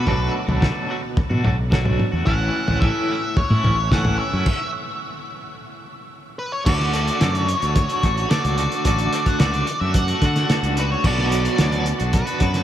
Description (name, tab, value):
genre	psychedelic rock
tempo	110 BPM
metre	4/4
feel	straight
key	unclear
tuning	A4 = 440 Hz
part	octave-fuzz lead guitar	melody	0.0-12.6 s	B4 to F#5	-26 LUFS	equal	distortion, analog delay
part	twangy electric guitar	riff	0.0-12.6 s	A2 to F#4	-24 LUFS	right 1 dB	tremolo
part	growling fingered electric bass	bass	0.0-12.6 s	A1 to D3	-22 LUFS	equal	overdrive
part	cloth-damped thuddy drum kit	drums	0.1-12.6 s	crash cymbal, hi-hat, kick drum, snare drum, toms	-22 LUFS	equal	none
room	moderate huge ambient reverb, RT60 7.9 s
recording	dreamy mix soaked in reverb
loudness	-18 LUFS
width	side -11 dB against mid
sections	0.0-6.7 A section; 6.7-12.6 B section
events	stop 4.5-6.7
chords	0.1 Bm7; 2.3 A; 6.7 D; 11.0 Bm